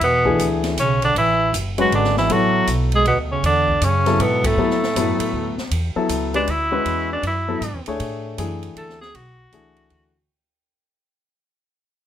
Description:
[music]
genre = modal jazz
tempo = 158 BPM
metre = 3/4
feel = swing 64% on 8ths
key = E mixolydian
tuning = A4 = 440 Hz
[part]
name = clear tenor saxophone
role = melody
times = 0.0-10.2 s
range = A3 to A4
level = -20 LUFS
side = equal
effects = none
[part]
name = mellow bass clarinet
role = second line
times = 0.0-5.6 s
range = A2 to G#3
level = -25 LUFS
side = right 6 dB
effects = none
[part]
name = upright bass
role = bass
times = 0.0-10.3 s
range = F#1 to A2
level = -24 LUFS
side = equal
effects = none
[part]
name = open jazz drum kit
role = drums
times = 0.0-10.0 s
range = hi-hat, kick drum, ride cymbal, snare drum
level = -30 LUFS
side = right 1 dB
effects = none
[part]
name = warm baby grand piano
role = accompaniment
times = 0.3-10.1 s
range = E3 to C#5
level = -23 LUFS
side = left 4 dB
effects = none
[sound]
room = moderate club reverb, RT60 0.7 s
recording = none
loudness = -17 LUFS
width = side -10 dB against mid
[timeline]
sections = 0.0-5.7 A section; 5.7-10.3 B section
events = band accent 4.4; fade-out 5.7-10.3; tenor saxophone solo 5.7-10.3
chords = 0.0 E9sus4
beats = | 0.01 0.39 0.77 | 1.15 1.53 1.92 | 2.30 2.68 3.06 | 3.44 3.82 4.20 | 4.58 4.96 5.34 | 5.72 6.10 6.48 | 6.86 7.24 7.62 | 8.00 8.38 8.76 | 9.14 9.52 9.90

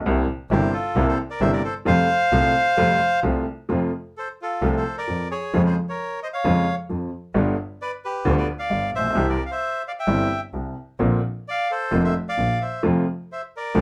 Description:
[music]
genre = tango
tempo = 131 BPM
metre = 4/4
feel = rubato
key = F major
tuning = A4 = 441 Hz
[part]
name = warm upright piano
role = accompaniment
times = 0.0-13.8 s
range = F1 to G4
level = -25 LUFS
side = equal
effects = none
[part]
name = rich double bass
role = bass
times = 0.0-13.8 s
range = F1 to F2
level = -27 LUFS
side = equal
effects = none
[part]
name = bandoneon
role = melody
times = 0.5-13.8 s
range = F4 to G5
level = -26 LUFS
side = equal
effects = none
[sound]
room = moderate studio ambience, RT60 0.5 s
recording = band playing live in one room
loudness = -23 LUFS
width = mono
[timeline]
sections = 0.0-3.7 A section; 3.7-13.8 B section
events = none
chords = 0.0 C7; 1.9 Fadd9; 3.7 F; 5.5 Db/F; 7.3 G7; 9.2 C; 11.0 Bbadd9; 12.8 F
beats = | 0.04 0.49 0.94 1.40 | 1.85 2.31 2.77 3.23 | 3.69 4.15 4.61 5.07 | 5.52 5.98 6.43 6.89 | 7.34 7.79 8.25 8.70 | 9.15 9.61 10.07 10.53 | 10.99 11.45 11.91 12.37 | 12.83 13.29 13.75

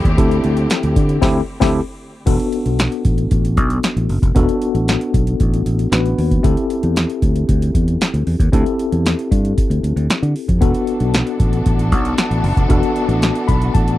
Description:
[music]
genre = early-eighties boogie funk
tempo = 115 BPM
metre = 4/4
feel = straight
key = E minor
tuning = A4 = 441 Hz
[part]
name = tine electric piano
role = accompaniment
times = 0.0-14.0 s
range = B3 to B5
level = -20 LUFS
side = left 3 dB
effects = overdrive, medium stereo tremolo
[part]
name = warm studio string section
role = sustained chords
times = 0.0-2.2, 10.6-14.0 s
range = D3 to A4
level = -26 LUFS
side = equal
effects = none
[part]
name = fingered electric bass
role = bass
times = 0.0-14.0 s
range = E1 to D3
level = -17 LUFS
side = equal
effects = none
[part]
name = electro analog drum machine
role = drums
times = 0.0-14.0 s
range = crash cymbal, hi-hat, kick drum, snare drum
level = -17 LUFS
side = equal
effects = none
[sound]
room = little or no reverb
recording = dry, close 1970s-style studio recording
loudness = -14 LUFS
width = side -15 dB against mid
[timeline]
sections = 0.0-2.3 A section; 2.3-14.0 B section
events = band accent 1.2-2.3; tine electric piano fill 13.2-14.0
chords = 0.0 D9sus4; 2.3 E9sus4 (rootless); 6.4 D9sus4; 10.6 E9sus4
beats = | 0.18 0.70 1.22 1.75 | 2.27 2.79 3.31 3.83 | 4.35 4.88 5.40 5.92 | 6.44 6.96 7.49 8.01 | 8.53 9.05 9.57 10.09 | 10.62 11.14 11.66 12.18 | 12.70 13.22 13.74

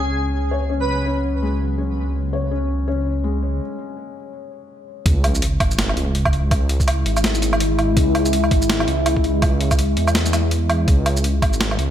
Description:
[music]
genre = half-time drum and bass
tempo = 165 BPM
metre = 4/4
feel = swing 58% on 16ths, half-time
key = C# minor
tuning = A4 = 439 Hz
[part]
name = airy dreamy lead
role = melody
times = 0.0-0.9 s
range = G#4 to B4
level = -27 LUFS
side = right 1 dB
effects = chorus, tape echo
[part]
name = deep dark ambient pad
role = sustained chords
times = 0.6-11.9 s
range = F#3 to F#5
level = -24 LUFS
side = left 2 dB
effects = chorus, built-in reverb, sidechain pumping
[part]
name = felt-muted upright piano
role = arpeggios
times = 0.0-5.1 s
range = G#3 to C#5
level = -25 LUFS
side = left 4 dB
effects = tape echo
[part]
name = dark detuned saw bass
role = bass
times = 0.0-11.9 s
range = G#1 to E2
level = -21 LUFS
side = equal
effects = none
[part]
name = boom bap sampler-style drum kit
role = drums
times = 5.1-11.9 s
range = hi-hat, shaker, snare drum, woodblock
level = -22 LUFS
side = right 1 dB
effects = studio reverb
[part]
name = electronic kick drum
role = drums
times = 5.1-11.5 s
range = none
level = -18 LUFS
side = equal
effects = studio reverb
[part]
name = sub drop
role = sound effects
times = 5.1-6.5 s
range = none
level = -23 LUFS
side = right 1 dB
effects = none
[sound]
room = moderate lush hall reverb, RT60 1.9 s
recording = dreamy mix soaked in reverb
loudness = -17 LUFS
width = side -10 dB against mid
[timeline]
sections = 0.0-5.1 A section; 5.1-11.9 B section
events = filter sweep on ambient pad 0.0-5.1; filter sweep on felt piano 0.0-5.1; break 3.6-5.1; drop 5.1-11.9; impact 5.1-6.5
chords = 0.0 B5/C#; 5.1 C#m; 10.9 Bm7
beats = 0.33 | 0.69 1.06 1.42 1.79 | 2.15 2.51 2.88 3.24 | 3.60 3.97 4.33 4.70 | 5.06 5.42 5.79 6.15 | 6.51 6.88 7.24 7.60 | 7.97 8.33 8.70 9.06 | 9.42 9.79 10.15 10.51 | 10.88 11.24 11.60

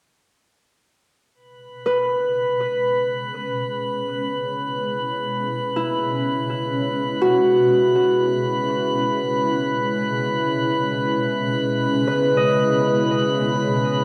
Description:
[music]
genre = ambient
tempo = free time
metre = none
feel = none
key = C# minor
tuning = A4 = 441 Hz
[part]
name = shimmering ambient pad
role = sustained chords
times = 2.1-14.0 s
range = B2 to E4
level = -28 LUFS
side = equal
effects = chorus, built-in reverb, phaser
[part]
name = drifting glass-harmonics texture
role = texture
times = 1.7-14.0 s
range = B4 to B5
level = -26 LUFS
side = equal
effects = chorus, built-in reverb
[part]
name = bowed-like drone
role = drone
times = 2.1-14.0 s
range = C#3 to G#3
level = -31 LUFS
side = equal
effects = built-in reverb
[part]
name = Celtic harp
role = arpeggios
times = 1.9-14.0 s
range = E4 to D#5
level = -24 LUFS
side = equal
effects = dub echo
[sound]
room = wet spring reverb, RT60 2.6 s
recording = echo-heavy mix, cassette tape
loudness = -21 LUFS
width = mono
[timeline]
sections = 1.4-14.0 A section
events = fade-in on ambient pad 1.4-14.0; fade-in on synth drone 1.4-14.0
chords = 1.4 C#m7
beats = free time

